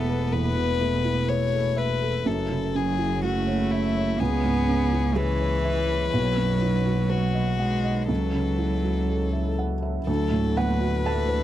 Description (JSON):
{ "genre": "neoclassical piano and strings", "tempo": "62 BPM", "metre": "4/4", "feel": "rubato", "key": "F# minor", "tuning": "A4 = 440 Hz", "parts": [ { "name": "rich violin", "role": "melody", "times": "0.0-11.4 s", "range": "E4 to C#5", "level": "-29 LUFS", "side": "left 7 dB", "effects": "none" }, { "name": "warm cello", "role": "second line", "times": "0.0-11.4 s", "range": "E3 to B3", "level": "-28 LUFS", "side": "right 4 dB", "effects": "none" }, { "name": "felt-muted upright piano", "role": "accompaniment", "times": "0.0-11.4 s", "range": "B1 to A5", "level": "-28 LUFS", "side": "right 2 dB", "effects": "none" }, { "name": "deep dark ambient pad", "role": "sustained chords", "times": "0.0-11.4 s", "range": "F#3 to C#5", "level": "-36 LUFS", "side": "left 1 dB", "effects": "chorus, built-in reverb" }, { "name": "warm double bass", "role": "bass", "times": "0.0-11.4 s", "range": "E1 to D2", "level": "-27 LUFS", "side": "left 1 dB", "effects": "none" } ], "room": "light reverb", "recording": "dry, close 1970s-style studio recording", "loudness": "-22 LUFS", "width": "side -12 dB against mid", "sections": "0.0-10.1 A section; 10.1-11.4 B section", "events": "none", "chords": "0.0 Esus4; 2.3 F#m7; 4.2 C#m7; 6.1 B; 8.1 F#m7/C#; 10.1 D6" }